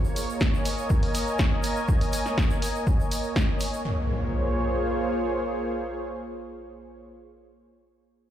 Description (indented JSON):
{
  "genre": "melodic techno",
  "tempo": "122 BPM",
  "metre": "4/4",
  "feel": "straight",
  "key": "Bb minor",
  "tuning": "A4 = 441 Hz",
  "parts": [
    { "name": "lush unison pad", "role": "sustained chords", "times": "0.0-7.1 s", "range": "Bb3 to Ab5", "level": "-28 LUFS", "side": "equal", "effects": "chorus, sidechain pumping" },
    { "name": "egg shaker", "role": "percussion", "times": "0.0-3.8 s", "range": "none", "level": "-42 LUFS", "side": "left 3 dB", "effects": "none" },
    { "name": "punchy analog drum machine", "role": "drums", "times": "0.2-3.7 s", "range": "hi-hat, snare drum", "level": "-30 LUFS", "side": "equal", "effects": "none" },
    { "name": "electronic kick drum", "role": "drums", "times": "0.4-3.5 s", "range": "none", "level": "-24 LUFS", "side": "equal", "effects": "none" },
    { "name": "impact", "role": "sound effects", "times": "3.9-7.1 s", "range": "none", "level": "-31 LUFS", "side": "equal", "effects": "none" }
  ],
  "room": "light reverb",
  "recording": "played on a big sound system in a bare room, large studio reverb",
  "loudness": "-23 LUFS",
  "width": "side -11 dB against mid",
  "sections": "0.0-3.9 A section; 3.9-7.8 B section",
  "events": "none",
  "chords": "0.0 Absus4/Bb; 3.9 Bbm7"
}